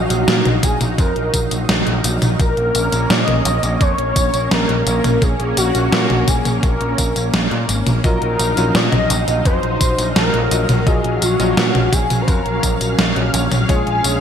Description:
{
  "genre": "synthwave",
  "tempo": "85 BPM",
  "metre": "4/4",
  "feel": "straight",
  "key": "unclear",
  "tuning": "A4 = 440 Hz",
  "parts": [
    { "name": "expressive portamento lead", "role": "melody", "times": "0.0-14.2 s", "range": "Gb4 to Eb5", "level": "-21 LUFS", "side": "equal", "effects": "ensemble chorus, cassette tape, ping-pong delay" },
    { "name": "analog string pad", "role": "sustained chords", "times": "0.0-14.2 s", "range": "Gb3 to F5", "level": "-22 LUFS", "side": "equal", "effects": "ensemble chorus, sidechain pumping" },
    { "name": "overdriven picked electric bass", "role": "bass", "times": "0.0-14.2 s", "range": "Ab1 to Bb2", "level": "-20 LUFS", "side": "equal", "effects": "sidechain pumping" },
    { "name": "gated 80s digital drum machine", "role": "drums", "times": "0.1-14.2 s", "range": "hi-hat, snare drum, tambourine, toms", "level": "-19 LUFS", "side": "equal", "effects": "gated reverb, gated reverb snare, overdrive" },
    { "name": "electronic kick drum", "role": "drums", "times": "0.6-13.8 s", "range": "none", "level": "-18 LUFS", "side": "equal", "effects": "overdrive" },
    { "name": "warm electric grand piano", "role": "stabs", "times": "8.0-14.2 s", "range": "Gb3 to Eb5", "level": "-24 LUFS", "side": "left 2 dB", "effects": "analog chorus, ping-pong delay" }
  ],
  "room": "moderate lush hall reverb, RT60 1.7 s, digital ambience",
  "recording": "bright 1980s-style digital production",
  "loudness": "-14 LUFS",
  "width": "side -8 dB against mid",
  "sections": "0.0-14.2 A section",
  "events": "none",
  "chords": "0.0 Ebmadd9/Bb; 2.4 Bbm; 8.0 Ebmadd9/Bb; 13.7 Db/Bb",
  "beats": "0.28 0.98 1.69 | 2.40 3.10 3.81 4.51 | 5.22 5.93 6.63 7.34 | 8.04 8.75 9.46 10.16 | 10.87 11.57 12.28 12.98 | 13.69"
}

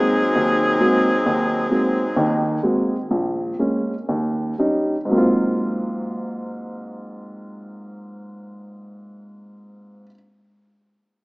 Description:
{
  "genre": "jazz",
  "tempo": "112-132 BPM",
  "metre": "4/4",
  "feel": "swing 66% on 8ths",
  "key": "Ab major, Ab mixolydian from 3.1 s",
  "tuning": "A4 = 435 Hz",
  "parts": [
    { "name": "warm saxophone section", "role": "melody", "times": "0.0-2.6 s", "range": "Gb3 to Ab4", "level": "-19 LUFS", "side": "equal", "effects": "none" },
    { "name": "dark upright piano", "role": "accompaniment", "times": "0.0-10.1 s", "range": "Bb1 to Gb4", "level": "-21 LUFS", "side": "equal", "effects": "none" }
  ],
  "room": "wet plate reverb, RT60 2.6 s",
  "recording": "rough home demo mix, small speaker sound",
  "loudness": "-18 LUFS",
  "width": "side -25 dB against mid",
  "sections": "0.0-3.1 A section; 3.1-5.1 B section; 5.1-9.4 C section",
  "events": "slowing down 1.2-5.1",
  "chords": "0.0 Ab9; 3.1 Bbm7; 4.1 Eb7; 5.1 Ab13",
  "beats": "0.34 0.79 | 1.25 1.70 2.16 2.63 | 3.10 3.58 4.08 4.59 | 5.11 5.64 6.18 6.71 | 7.25 7.78 8.31 8.85"
}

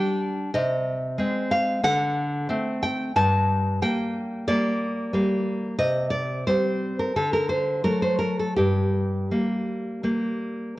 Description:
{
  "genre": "romantic piece for solo classical guitar",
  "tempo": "80-94 BPM",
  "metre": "4/4",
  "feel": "rubato",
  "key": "G minor",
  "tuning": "A4 = 436 Hz",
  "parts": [
    { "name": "nylon-string guitar", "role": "solo", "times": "0.0-10.8 s", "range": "G2 to A5", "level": "-22 LUFS", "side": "equal", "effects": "none" }
  ],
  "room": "moderate recital hall reverb, RT60 1.6 s",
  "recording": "worn, warbling old tape, cassette tape, warbly pitch drift",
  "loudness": "-22 LUFS",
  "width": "side -17 dB against mid",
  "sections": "0.0-10.8 A section",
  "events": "none",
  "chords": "0.0 G5; 0.5 Ab/C; 1.8 D7; 3.1 Gm; 5.8 C5; 7.1 D; 8.6 Gm",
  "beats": "| 0.53 1.18 1.83 2.48 | 3.14 3.80 4.46 5.12 | 5.78 6.46 7.14 7.84 | 8.58 9.31 10.04 10.76"
}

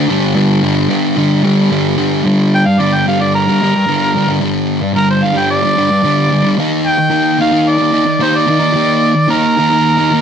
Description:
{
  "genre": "rock",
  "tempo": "110 BPM",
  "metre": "4/4",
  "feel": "straight",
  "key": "G minor",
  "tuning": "A4 = 440 Hz",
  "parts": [
    { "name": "fuzz guitar", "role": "riff", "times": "0.0-10.2 s", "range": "G2 to Eb4", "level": "-12 LUFS", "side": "equal", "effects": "distortion" },
    { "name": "mellow harmonica", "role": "melody", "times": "2.5-10.2 s", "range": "Bb4 to G5", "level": "-14 LUFS", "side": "right 2 dB", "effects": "overdrive" }
  ],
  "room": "moderate club reverb, RT60 0.7 s",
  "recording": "none",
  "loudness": "-10 LUFS",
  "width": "side -8 dB against mid",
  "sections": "0.0-2.2 A section; 2.2-10.2 B section",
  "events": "harmonica solo 2.2-10.2",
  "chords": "0.1 G5; 6.6 Eb5",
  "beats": "| 0.09 0.62 1.16 1.70 | 2.24 2.79 3.33 3.87 | 4.41 4.96 5.50 6.04 | 6.59 7.13 7.68 8.22 | 8.76 9.31 9.85"
}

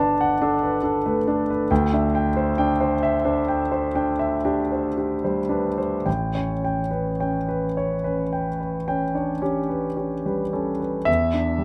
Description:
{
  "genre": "classical, impressionist solo piano",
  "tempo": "35-48 BPM (dotted quarters)",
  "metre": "9/8",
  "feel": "rubato",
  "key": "unclear",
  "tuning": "A4 = 440 Hz",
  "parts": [
    { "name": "warm concert grand piano", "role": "solo", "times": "0.0-11.6 s", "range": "G1 to A5", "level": "-23 LUFS", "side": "equal", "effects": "none" }
  ],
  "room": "little or no reverb",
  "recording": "close, detailed microphones",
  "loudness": "-23 LUFS",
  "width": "mono",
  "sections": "0.0-11.1 A section",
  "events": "none",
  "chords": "0.0 Gmaj9; 1.7 D9sus4; 6.1 A9; 11.1 E7(no3)",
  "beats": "0.42 | 1.71 3.02 4.46 | 6.07 7.78 9.43 | 11.08"
}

